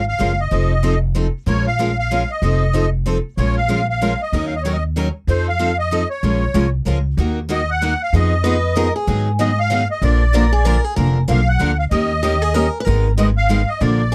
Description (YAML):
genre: acoustic string swing (jazz manouche)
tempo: 190 BPM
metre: 3/4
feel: swing 60% on 8ths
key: Bb minor, Eb minor from 7.2 s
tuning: A4 = 440 Hz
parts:
  - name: musette accordion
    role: melody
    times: 0.0-14.1 s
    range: C5 to Gb5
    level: -23 LUFS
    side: equal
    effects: none
  - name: upright bass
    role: bass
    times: 0.0-14.1 s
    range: F1 to Ab2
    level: -20 LUFS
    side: equal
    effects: none
  - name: picked steel-string acoustic guitar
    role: accompaniment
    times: 0.2-14.1 s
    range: D3 to Bb4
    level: -25 LUFS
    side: equal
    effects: none
  - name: picked steel-string acoustic guitar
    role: accompaniment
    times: 0.2-14.0 s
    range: D3 to Bb4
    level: -27 LUFS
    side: equal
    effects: none
  - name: picked steel-string acoustic guitar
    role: second line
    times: 8.4-14.1 s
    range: G4 to Cb5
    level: -25 LUFS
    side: equal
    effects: none
room: little or no reverb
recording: dry, close 1970s-style studio recording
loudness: -18 LUFS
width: mono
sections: 0.0-7.2 A section; 7.2-14.1 B section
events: none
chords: 0.0 Bbm7; 0.5 F7; 1.5 Bbm7; 2.4 F7; 3.4 Bbm7; 4.3 Ebm7; 5.3 F7; 6.2 Bbm7; 7.2 Ebm; 8.1 Fm7b5; 9.1 Abm7; 10.0 Bb; 11.9 Eb7; 12.9 Abmadd9